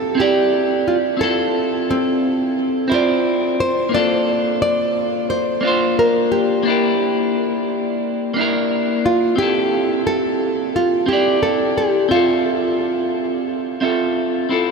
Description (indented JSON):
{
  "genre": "chillout",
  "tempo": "88 BPM",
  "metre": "4/4",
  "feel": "swing 54% on 16ths",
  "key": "G dorian",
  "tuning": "A4 = 440 Hz",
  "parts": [
    { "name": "nylon-string guitar", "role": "melody", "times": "0.0-14.1 s", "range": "C4 to D5", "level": "-19 LUFS", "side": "equal", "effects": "tape echo" },
    { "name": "clean electric guitar", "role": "accompaniment", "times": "0.0-14.7 s", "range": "Bb3 to E5", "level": "-18 LUFS", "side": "moving between left 5 dB and right 6 dB", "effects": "auto-pan, analog delay" }
  ],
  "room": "wet huge ambient reverb, RT60 7.5 s",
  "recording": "dreamy mix soaked in reverb",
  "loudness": "-16 LUFS",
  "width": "side -4 dB against mid",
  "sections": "0.0-14.7 A section",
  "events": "none",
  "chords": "0.0 Fmaj9 (rootless); 1.2 Dm9; 3.9 Bbmaj9; 6.7 Gm6/Bb; 9.4 C69; 12.1 Fmaj7/C"
}